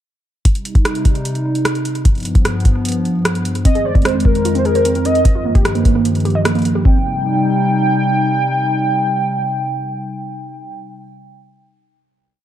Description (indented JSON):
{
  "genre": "IDM",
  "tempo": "150 BPM",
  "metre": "4/4",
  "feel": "straight",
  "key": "C minor",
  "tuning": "A4 = 441 Hz",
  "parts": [
    { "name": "hollow soft pad", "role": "sustained chords", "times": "0.7-10.8 s", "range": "F2 to Eb4", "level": "-19 LUFS", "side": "left 1 dB", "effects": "chorus" },
    { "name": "electro analog drum machine", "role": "drums", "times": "0.5-6.7 s", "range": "hi-hat, rim click", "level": "-22 LUFS", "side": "right 1 dB", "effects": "none" },
    { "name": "electronic kick drum", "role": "drums", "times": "0.5-6.9 s", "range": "none", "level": "-12 LUFS", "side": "equal", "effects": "none" },
    { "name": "warbly nostalgic lead", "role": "melody", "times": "3.7-10.8 s", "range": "Bb4 to G5", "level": "-19 LUFS", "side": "equal", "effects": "analog chorus, tape echo" },
    { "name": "warbly dusty pluck", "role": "arpeggios", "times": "3.7-7.0 s", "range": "Bb3 to Eb5", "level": "-20 LUFS", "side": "right 5 dB", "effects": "chorus, digital delay" }
  ],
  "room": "light reverb",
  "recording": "dark, warm production",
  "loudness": "-13 LUFS",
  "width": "side -11 dB against mid",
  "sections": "0.5-6.9 groove; 6.9-10.1 final chord",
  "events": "none",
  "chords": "0.5 Cm; 2.1 G7; 3.7 Fm7; 5.3 Ebadd9; 6.9 Cm",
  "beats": "| 0.45 0.85 1.25 1.65 | 2.05 2.45 2.85 3.25 | 3.65 4.05 4.45 4.85 | 5.25 5.65 6.05 6.45 | 6.85 7.25 7.65 8.05 | 8.45 8.85 9.25 9.65"
}